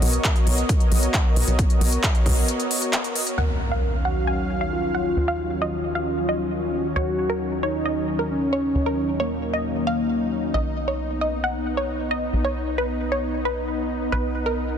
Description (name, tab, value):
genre	uplifting trance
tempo	134 BPM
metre	4/4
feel	straight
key	Eb minor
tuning	A4 = 441 Hz
part	lush unison pad	sustained chords	0.0-14.8 s	Eb3 to F5	-27 LUFS	equal	chorus, sidechain pumping
part	tight sequencer bass	bass	0.0-14.8 s	B1 to Eb2	-27 LUFS	equal	sidechain pumping
part	big-room dance drum kit	drums	0.0-3.4 s	handclaps, hi-hat	-26 LUFS	equal	overdrive, small room reverb
part	electronic kick drum	drums	0.2-2.3 s	none	-20 LUFS	equal	overdrive, small room reverb
part	wide unison pluck	melody	3.4-14.7 s	Bb4 to Ab5	-27 LUFS	right 1 dB	sidechain pumping, digital delay
part	warm velvety synth lead	second line	3.4-10.5 s	Bb3 to Bb4	-26 LUFS	equal	chorus, ping-pong delay
part	impact	sound effects	3.4-5.2 s	none	-27 LUFS	equal	none
room	light reverb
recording	dense, heavily limited modern master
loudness	-21 LUFS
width	side -8 dB against mid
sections	0.0-3.4 A section; 3.4-14.8 B section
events	break 2.5-3.4; impact 3.4-5.2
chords	0.0 Bmaj7; 3.4 Ebm7; 10.5 B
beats	0.24 0.69 1.14 | 1.59 2.04 2.48 2.93 | 3.38 3.83 4.27 4.72 | 5.17 5.62 6.07 6.51 | 6.96 7.41 7.86 8.30 | 8.75 9.20 9.65 10.10 | 10.54 10.99 11.44 11.89 | 12.33 12.78 13.23 13.68 | 14.12 14.57